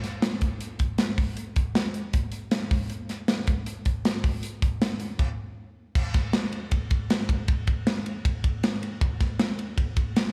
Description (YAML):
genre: indie pop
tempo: 157 BPM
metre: 4/4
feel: straight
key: none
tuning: none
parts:
  - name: modern studio drum kit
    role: drums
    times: 0.0-10.3 s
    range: crash cymbal, hi-hat, kick drum, ride cymbal, snare drum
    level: -27 LUFS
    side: equal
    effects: none
room: moderate lush hall reverb, RT60 2.2 s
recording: small room ambience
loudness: -27 LUFS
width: mono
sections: 0.0-6.0 A section; 6.0-10.3 B section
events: stop 5.2-6.0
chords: none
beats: 0.23 0.61 1.00 | 1.38 1.76 2.14 2.52 | 2.90 3.29 3.67 4.05 | 4.43 4.81 5.19 5.58 | 5.96 6.34 6.72 7.10 | 7.48 7.87 8.25 8.63 | 9.01 9.39 9.78 10.16